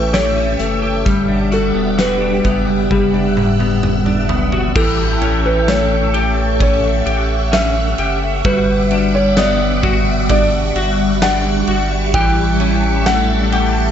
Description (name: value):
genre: dream pop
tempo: 65 BPM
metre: 4/4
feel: straight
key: A mixolydian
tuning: A4 = 445 Hz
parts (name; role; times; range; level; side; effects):
- felt-muted upright piano; melody; 0.0-13.9 s; G4 to G5; -20 LUFS; right 1 dB; digital delay
- phased string machine; sustained chords; 0.0-13.9 s; G3 to E6; -20 LUFS; right 1 dB; ensemble chorus, phaser
- clean electric guitar; arpeggios; 0.0-13.9 s; E3 to G4; -18 LUFS; left 3 dB; ensemble chorus, digital delay
- warm sub bass; bass; 0.0-13.9 s; E1 to A1; -20 LUFS; equal; none
- huge arena drum kit; drums; 0.1-13.7 s; crash cymbal, hi-hat, kick drum, ride cymbal, snare drum, tambourine, toms; -21 LUFS; equal; none
- glockenspiel with brass mallets; texture; 4.8-6.5, 12.1-13.6 s; E6 to G6; -30 LUFS; right 2 dB; digital delay
room: little or no reverb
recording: dark, warm production, nothing above 7.9 kHz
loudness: -13 LUFS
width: side -9 dB against mid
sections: 0.0-4.8 A section; 4.8-13.9 B section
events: drum fill 2.9-4.8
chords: 0.0 A7; 1.1 Em9; 4.8 A7; 8.4 Em9/G; 12.1 A7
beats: 0.14 | 1.06 1.99 2.91 3.83 | 4.75 5.68 6.60 7.52 | 8.45 9.37 10.29 11.21 | 12.14 13.06